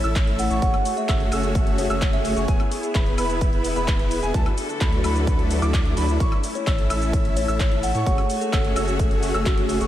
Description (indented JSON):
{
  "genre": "EDM, festival progressive house",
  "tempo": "129 BPM",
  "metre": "4/4",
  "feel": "straight",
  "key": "A major",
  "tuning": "A4 = 440 Hz",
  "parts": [
    { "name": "kalimba", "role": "melody", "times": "0.0-2.5, 6.6-9.7 s", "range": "F#4 to F#5", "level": "-28 LUFS", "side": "equal", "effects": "diffuse ambient delay" },
    { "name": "clear symphonic string section", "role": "sustained chords", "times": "0.0-9.9 s", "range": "D3 to A4", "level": "-30 LUFS", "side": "left 3 dB", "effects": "sidechain pumping" },
    { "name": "bright grand piano", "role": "arpeggios", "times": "0.0-9.9 s", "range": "G#5 to E6", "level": "-31 LUFS", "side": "right 1 dB", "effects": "sidechain pumping, diffuse ambient delay" },
    { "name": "big supersaw lead", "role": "riff", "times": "0.0-9.9 s", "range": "F#3 to E5", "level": "-27 LUFS", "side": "equal", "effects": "cassette tape, sidechain pumping, diffuse ambient delay" },
    { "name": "saturated sub bass", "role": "bass", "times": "0.0-9.9 s", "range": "E1 to A2", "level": "-26 LUFS", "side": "equal", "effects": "sidechain pumping" },
    { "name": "big-room dance drum kit", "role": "drums", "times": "0.0-9.9 s", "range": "handclaps, hi-hat, shaker, woodblock", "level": "-32 LUFS", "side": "left 1 dB", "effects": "none" },
    { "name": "electronic kick drum", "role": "drums", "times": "0.2-9.6 s", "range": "none", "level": "-22 LUFS", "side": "equal", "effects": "none" }
  ],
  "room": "moderate lush hall reverb, RT60 2.3 s",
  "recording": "dreamy mix soaked in reverb",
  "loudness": "-19 LUFS",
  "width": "side -12 dB against mid",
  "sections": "0.0-9.9 A section",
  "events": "none",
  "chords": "0.0 A; 0.6 F#madd9; 2.5 E; 4.3 Dadd9; 6.2 A; 8.1 F#madd9"
}